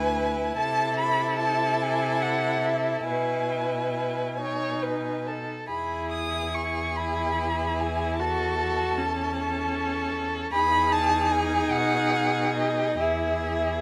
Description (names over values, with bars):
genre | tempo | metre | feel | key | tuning
classical, slow romantic movement for string quartet | 44-52 BPM (dotted quarters) | 6/8 | rubato | E major | A4 = 440 Hz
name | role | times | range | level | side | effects
warm violin | melody | 0.0-13.8 s | D#5 to D#6 | -30 LUFS | equal | none
rich violin | second line | 0.0-13.8 s | G#4 to C#5 | -32 LUFS | equal | none
rich viola | accompaniment | 0.0-13.8 s | C#4 to F#4 | -33 LUFS | equal | none
clear cello | bass | 0.0-13.8 s | D2 to C3 | -34 LUFS | equal | none
room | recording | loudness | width
light reverb | none | -26 LUFS | mono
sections
0.0-13.8 A section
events
none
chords
0.0 E7/D; 0.6 Am/C; 3.1 E/B; 4.4 B; 5.7 E; 8.2 A6/E; 10.5 E; 11.7 B6; 13.0 E